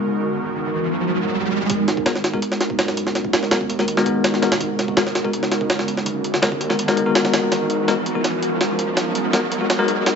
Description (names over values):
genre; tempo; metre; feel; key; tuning
drum and bass, jungle; 165 BPM; 4/4; straight; G# minor; A4 = 436 Hz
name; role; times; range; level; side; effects
airy breathy pad; sustained chords; 0.0-10.2 s; G#3 to A#4; -24 LUFS; right 2 dB; chorus
bell-like tine electric piano; stabs; 0.0-10.2 s; G#3 to A#4; -23 LUFS; left 4 dB; fast stereo tremolo, dub echo
riser; sound effects; 0.0-10.2 s; none; -27 LUFS; right 2 dB; none
dark detuned saw bass; bass; 1.7-10.2 s; F#1 to D#2; -32 LUFS; right 1 dB; none
jungle sampler-style drum kit; drums; 1.7-10.2 s; hi-hat, kick drum, snare drum; -21 LUFS; right 1 dB; high-pass filter on hats, high-pass filter on kick, high-pass filter on snare
room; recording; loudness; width
moderate echo chamber reverb, RT60 1.9 s, digital ambience; high-pass filter, nothing above 7.9 kHz; -18 LUFS; side -6 dB against mid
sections
0.0-1.7 A section; 1.7-10.2 B section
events
riser 0.0-1.7, 1.7-10.2; filter sweep on tine electric piano 0.0-1.7; build-up 1.7-10.2; filter sweep on analog synth pad 1.7-10.2; drum fill 7.5-10.2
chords
0.0 G#m9